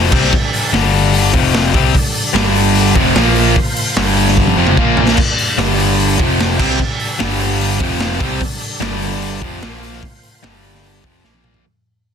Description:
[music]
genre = hard rock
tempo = 149 BPM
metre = 4/4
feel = straight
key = G minor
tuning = A4 = 439 Hz
[part]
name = overdriven tonewheel organ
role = sustained chords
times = 0.0-11.6 s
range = F3 to C5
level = -28 LUFS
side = right 4 dB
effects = slow rotary speaker, chorus vibrato
[part]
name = overdriven electric guitar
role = riff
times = 0.0-11.6 s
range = F2 to C4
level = -17 LUFS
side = left 12 dB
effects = none
[part]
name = overdriven picked electric bass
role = bass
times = 0.0-11.6 s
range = F1 to C2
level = -18 LUFS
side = equal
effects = none
[part]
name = raw garage drum kit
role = drums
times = 0.1-11.6 s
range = crash cymbal, hi-hat, kick drum, snare drum, toms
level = -16 LUFS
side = equal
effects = none
[part]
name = sludgy distorted guitar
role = riff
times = 2.3-11.6 s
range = F2 to C4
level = -18 LUFS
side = right 17 dB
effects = overdrive
[sound]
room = little or no reverb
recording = dense, heavily limited modern master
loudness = -12 LUFS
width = side -7 dB against mid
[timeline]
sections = 0.0-5.2 A section; 5.2-11.6 A section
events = drum fill 4.4-5.2, 11.2-11.6; fade-out 5.2-11.6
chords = 0.1 G5; 1.3 F5; 1.7 G5; 3.2 Bb5; 4.0 G5; 4.8 Bb5; 5.2 G5; 6.2 F5; 6.6 G5; 7.8 F5; 8.2 G5; 9.6 Bb5; 10.4 G5; 11.2 Bb5

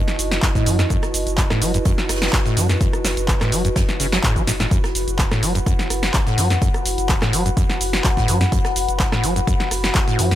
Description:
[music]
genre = acid house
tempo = 126 BPM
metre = 4/4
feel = straight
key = F# dorian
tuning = A4 = 438 Hz
[part]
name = dark analog pad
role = sustained chords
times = 0.0-10.4 s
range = D#5 to F#5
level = -30 LUFS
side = left 4 dB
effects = chorus, phaser, sidechain pumping
[part]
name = warbly tape-like pad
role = texture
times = 0.0-10.4 s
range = E4 to B5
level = -27 LUFS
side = right 1 dB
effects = chorus, built-in reverb, sidechain pumping
[part]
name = jazz brush drum kit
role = drums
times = 0.1-10.4 s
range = hi-hat, snare drum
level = -33 LUFS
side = right 2 dB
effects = none
[part]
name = punchy analog drum machine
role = drums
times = 0.1-10.4 s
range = handclaps, hi-hat, rim click, shaker, snare drum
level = -23 LUFS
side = equal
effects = none
[part]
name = round analog bass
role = bass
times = 0.2-10.4 s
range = F#1 to F#2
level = -23 LUFS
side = equal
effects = sidechain pumping
[part]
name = acid bass, saw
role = riff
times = 0.4-10.4 s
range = F#1 to F#3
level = -23 LUFS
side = equal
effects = overdrive, wide subtle chorus, tape echo
[part]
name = electronic kick drum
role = drums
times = 0.4-10.1 s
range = none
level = -20 LUFS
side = equal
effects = none
[sound]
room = little or no reverb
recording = none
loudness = -16 LUFS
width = side -13 dB against mid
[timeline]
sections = 0.0-10.4 A section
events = none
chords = 0.0 F#m

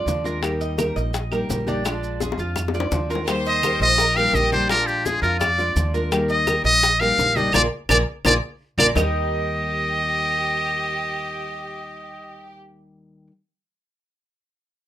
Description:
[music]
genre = latin, Cuban son and guajira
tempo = 169 BPM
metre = 4/4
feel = straight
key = Eb major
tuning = A4 = 440 Hz
[part]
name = nylon-string guitar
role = accompaniment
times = 0.0-13.3 s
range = Eb3 to G4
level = -29 LUFS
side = left 3 dB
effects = none
[part]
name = Cuban tres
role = arpeggios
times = 0.0-13.3 s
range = D4 to Eb5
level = -27 LUFS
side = right 3 dB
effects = none
[part]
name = upright bass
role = bass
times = 0.0-13.3 s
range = Bb1 to F2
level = -26 LUFS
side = right 1 dB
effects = none
[part]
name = bongos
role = percussion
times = 0.1-9.0 s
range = none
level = -29 LUFS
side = left 6 dB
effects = none
[part]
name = congas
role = percussion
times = 0.1-9.0 s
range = none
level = -32 LUFS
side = equal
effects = none
[part]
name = maracas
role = percussion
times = 0.1-9.1 s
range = none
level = -35 LUFS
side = right 3 dB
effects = none
[part]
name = claves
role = percussion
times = 0.4-9.0 s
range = none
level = -29 LUFS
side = right 4 dB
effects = none
[part]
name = bright studio violin section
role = second line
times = 3.3-4.9, 9.0-12.6 s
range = G4 to C5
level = -30 LUFS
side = right 1 dB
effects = none
[part]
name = trumpet with metal mute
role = melody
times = 3.5-12.6 s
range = G4 to F5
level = -20 LUFS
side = left 1 dB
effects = none
[sound]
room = moderate studio ambience, RT60 0.5 s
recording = rough home demo mix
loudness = -18 LUFS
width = side -12 dB against mid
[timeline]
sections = 0.0-3.3 A section; 3.3-9.0 B section; 9.0-11.8 C section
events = drum fill 2.2-3.3, 8.2-9.0; band accent 7.5-9.0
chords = 0.4 Eb; 1.9 Bb7; 3.3 Eb; 4.7 Bb7; 6.1 Eb; 7.5 Bb7; 9.0 Eb

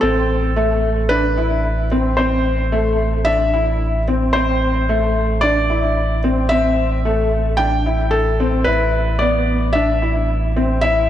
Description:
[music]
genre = piano and strings electronica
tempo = 111 BPM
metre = 4/4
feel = straight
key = A minor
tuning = A4 = 439 Hz
[part]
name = felt-muted upright piano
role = melody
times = 0.0-11.1 s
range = A4 to G5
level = -20 LUFS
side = left 1 dB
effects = diffuse ambient delay
[part]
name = warm grand piano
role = riff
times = 0.0-11.1 s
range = A3 to E4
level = -20 LUFS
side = left 1 dB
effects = ensemble chorus, diffuse ambient delay
[part]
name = round analog bass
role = bass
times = 0.0-11.1 s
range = A1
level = -20 LUFS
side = equal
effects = none
[sound]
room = moderate plate reverb, RT60 3.1 s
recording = dreamy mix soaked in reverb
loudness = -15 LUFS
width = side -11 dB against mid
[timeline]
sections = 0.0-11.1 A section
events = none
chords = 0.0 Am; 8.7 E5/A

